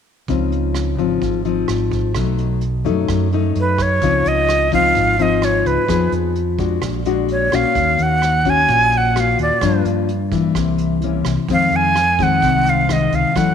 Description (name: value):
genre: bossa nova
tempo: 129 BPM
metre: 4/4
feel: straight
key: Db major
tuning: A4 = 441 Hz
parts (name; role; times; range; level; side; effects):
- nylon-string guitar; accompaniment; 0.3-13.5 s; F2 to Ab4; -19 LUFS; left 8 dB; none
- fingered electric bass; bass; 0.3-13.5 s; Ab1 to G2; -21 LUFS; right 2 dB; none
- vintage brush drum kit; drums; 0.3-13.5 s; hi-hat, kick drum, rim click; -28 LUFS; right 6 dB; none
- breathy bright jazz flute; melody; 3.6-13.5 s; Cb5 to Ab5; -16 LUFS; right 2 dB; none
room: light reverb, studio ambience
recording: 1960s-style stereo with parts hard left and right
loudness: -14 LUFS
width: side -8 dB against mid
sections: 0.3-4.0 A section; 4.0-13.5 B section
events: none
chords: 0.3 Dbmaj9; 2.2 Cb7; 4.0 Dbmaj9; 5.9 Fm7b5; 6.8 Bb7alt; 7.8 Ebm7; 9.6 Gm7; 10.6 C7b9; 11.5 Fm7